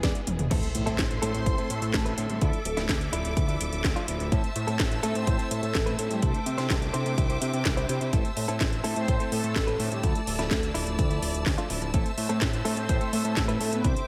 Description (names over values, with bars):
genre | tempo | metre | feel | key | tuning
italo disco | 126 BPM | 4/4 | straight | A minor | A4 = 440 Hz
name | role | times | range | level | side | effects
bright studio string section | sustained chords | 0.0-14.1 s | E3 to E6 | -38 LUFS | equal | none
direct-recorded clean electric guitar | stabs | 0.0-14.0 s | A2 to E5 | -36 LUFS | equal | vintage 12-bit sampler grit
fat analog bass | bass | 0.0-13.9 s | D1 to C3 | -32 LUFS | equal | none
electronic kick drum | drums | 0.0-13.9 s | none | -30 LUFS | equal | none
house drum kit | drums | 0.0-14.1 s | crash cymbal, handclaps, hi-hat, snare drum, toms | -34 LUFS | equal | gated reverb
impact | sound effects | 0.5-2.4 s | none | -39 LUFS | equal | none
mellow synth brass | melody | 1.2-14.1 s | G3 to C5 | -35 LUFS | equal | chorus, phaser, tape echo
room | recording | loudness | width
little or no reverb | none | -27 LUFS | mono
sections
0.5-14.1 A section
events
drum fill 0.3; impact 0.5-2.4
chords
0.0 E; 0.5 Am; 2.4 Dmadd9; 4.3 Am; 6.2 Cadd9; 8.1 Am; 10.0 Dmadd9; 11.9 Am